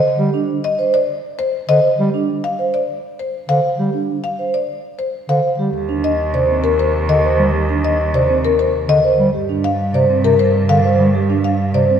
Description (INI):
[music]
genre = classical, minimalist pattern music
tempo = 100 BPM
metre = 3/4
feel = straight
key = Eb major from 5.7 s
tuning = A4 = 440 Hz
[part]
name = marimba with soft mallets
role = melody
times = 0.0-11.9 s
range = Bb4 to F5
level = -19 LUFS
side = left 5 dB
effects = none
[part]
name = vibraphone with soft mallets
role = arpeggios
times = 0.0-12.0 s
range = C4 to C5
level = -19 LUFS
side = right 4 dB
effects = none
[part]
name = mellow bass clarinet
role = accompaniment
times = 0.2-11.9 s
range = C3 to G3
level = -21 LUFS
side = equal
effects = none
[part]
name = rich cello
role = bass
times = 5.7-12.0 s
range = Eb2 to G2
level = -18 LUFS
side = right 2 dB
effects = none
[sound]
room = wet concert hall reverb, RT60 2.1 s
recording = none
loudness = -14 LUFS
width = side -8 dB against mid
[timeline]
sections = 0.0-5.7 A section; 5.7-12.0 B section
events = none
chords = 0.0 Cm; 5.7 Ebmaj7; 9.3 G7(no3)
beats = | 0.34 0.94 1.54 | 2.14 2.74 3.34 | 3.94 4.54 5.14 | 5.74 6.34 6.94 | 7.54 8.14 8.74 | 9.34 9.94 10.54 | 11.14 11.74